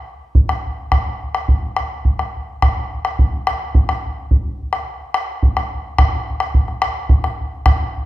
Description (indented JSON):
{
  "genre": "andean folk",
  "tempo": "71 BPM (dotted quarters)",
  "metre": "6/8",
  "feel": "straight",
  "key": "none",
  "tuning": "none",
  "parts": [
    { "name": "bombo", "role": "percussion", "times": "0.3-7.8 s", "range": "none", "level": "-16 LUFS", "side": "equal", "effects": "none" }
  ],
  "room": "wet recital hall reverb, RT60 1.3 s",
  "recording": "recorded in a church or concert hall",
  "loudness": "-16 LUFS",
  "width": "side -15 dB against mid",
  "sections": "0.3-8.1 A section",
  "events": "none",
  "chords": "none",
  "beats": "| 0.35 1.20 | 2.05 2.90 | 3.74 4.58 | 5.42 6.26 | 7.09"
}